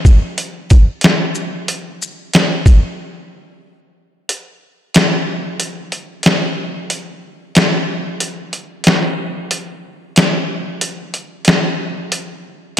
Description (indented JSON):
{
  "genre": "hip hop",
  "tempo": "92 BPM",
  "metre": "4/4",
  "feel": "swing 62% on 16ths",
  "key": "none",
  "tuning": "none",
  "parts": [
    { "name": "trip hop sampler-style drum kit", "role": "drums", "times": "0.1-12.8 s", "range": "hi-hat, kick drum, shaker, snare drum", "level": "-13 LUFS", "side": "equal", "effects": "none" }
  ],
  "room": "wet plate reverb, RT60 2.4 s",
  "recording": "none",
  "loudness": "-14 LUFS",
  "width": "side -11 dB against mid",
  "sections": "0.0-4.3 A section; 4.3-12.8 B section",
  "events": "break 3.0-4.3, 4.3-12.8",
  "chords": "none"
}